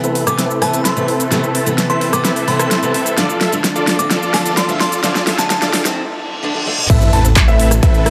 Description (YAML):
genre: EDM, festival progressive house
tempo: 129 BPM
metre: 4/4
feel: straight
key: A minor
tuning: A4 = 440 Hz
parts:
  - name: picked steel-string acoustic guitar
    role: accompaniment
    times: 0.0-6.8 s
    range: C3 to D4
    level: -25 LUFS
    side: equal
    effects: sidechain pumping
  - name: muted studio string section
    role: sustained chords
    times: 0.0-8.1 s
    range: C3 to B4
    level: -28 LUFS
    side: equal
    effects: sidechain pumping
  - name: big supersaw lead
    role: riff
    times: 0.0-8.1 s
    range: C4 to A5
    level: -22 LUFS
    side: equal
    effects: sidechain pumping, low-pass filter, dub echo
  - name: big-room dance drum kit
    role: drums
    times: 0.0-8.1 s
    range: crash cymbal, handclaps, hi-hat, rim click, shaker, snare drum, toms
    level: -21 LUFS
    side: equal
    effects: overdrive, studio ambience
  - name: riser, reverse cymbal and sub drop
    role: sound effects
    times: 2.5-8.1 s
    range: none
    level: -26 LUFS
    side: equal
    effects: none
  - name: glassy synth bell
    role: melody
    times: 0.3-5.6 s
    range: A5 to D6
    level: -26 LUFS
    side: equal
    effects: chorus, tremolo, dub echo
  - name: dark concert grand piano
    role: arpeggios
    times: 6.9-8.1 s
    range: E5 to A5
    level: -22 LUFS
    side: equal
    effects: sidechain pumping, dub echo
  - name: detuned saw bass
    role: bass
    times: 6.9-8.1 s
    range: A1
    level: -18 LUFS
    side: equal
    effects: chorus, sidechain pumping
  - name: electronic kick drum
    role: drums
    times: 6.9-7.9 s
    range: none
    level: -14 LUFS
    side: equal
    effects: overdrive, studio ambience
room: light reverb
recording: high-pass filter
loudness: -15 LUFS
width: mono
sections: 0.0-6.9 A section; 6.9-8.1 B section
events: build-up 0.0-6.9; drum fill 0.0-6.0, 6.7; filter sweep on supersaw synth 0.0-6.9; filter sweep 0.0-6.9; break 6.0-6.9; reverse cymbal 6.0-6.9; drop 6.9-8.1; impact 6.9-8.1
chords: 0.0 Amadd9; 3.2 Dm; 6.9 Amadd9